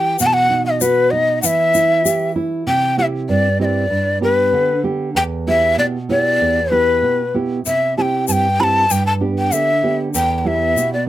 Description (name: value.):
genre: andean folk, Andean ensemble.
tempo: 96 BPM.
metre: 2/4.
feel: straight.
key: E minor.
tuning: A4 = 440 Hz.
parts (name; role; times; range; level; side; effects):
breathy bright large quena; melody; 0.0-11.1 s; B4 to B5; -15 LUFS; left 1 dB; none.
nylon-string guitar; accompaniment; 0.0-11.1 s; E2 to G4; -19 LUFS; right 3 dB; none.
egg shaker; percussion; 0.2-2.2, 7.7-10.9 s; none; -21 LUFS; left 8 dB; none.
room: light reverb.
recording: close, detailed microphones.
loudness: -14 LUFS.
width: side -14 dB against mid.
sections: 0.0-2.7 A section; 2.7-11.1 B section.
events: none.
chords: 0.2 B; 1.4 Em; 2.7 C; 3.9 G; 5.2 Em; 7.6 C; 8.9 G; 10.1 Em.